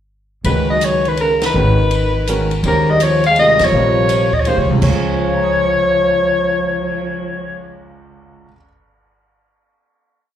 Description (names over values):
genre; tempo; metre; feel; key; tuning
modal jazz; 165 BPM; 3/4; swing 66% on 8ths; Db mixolydian; A4 = 440 Hz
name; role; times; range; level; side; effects
upright bass; bass; 0.4-8.5 s; Ab1 to Fb2; -19 LUFS; equal; none
compact cocktail drum kit; drums; 0.4-6.9 s; crash cymbal, cymbal swell, hi-hat, kick drum, ride cymbal, snare drum; -27 LUFS; equal; none
mellow soprano saxophone; melody; 0.5-7.8 s; Bb4 to F5; -16 LUFS; left 2 dB; slapback echo
breathy trombone; second line; 0.5-7.8 s; Db3 to Ab3; -22 LUFS; right 3 dB; slapback echo
warm baby grand piano; accompaniment; 0.5-8.7 s; Db2 to Db7; -22 LUFS; right 2 dB; slapback echo
room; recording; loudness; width
light reverb; live gig heard through the venue's PA, club reverb, lossy compression artefacts, faint mains hum; -13 LUFS; side -10 dB against mid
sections
0.5-4.8 A section; 4.8-7.0 final chord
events
band accent 1.4, 3.5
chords
0.5 Db9sus4; 2.6 Eb9sus4; 4.8 Db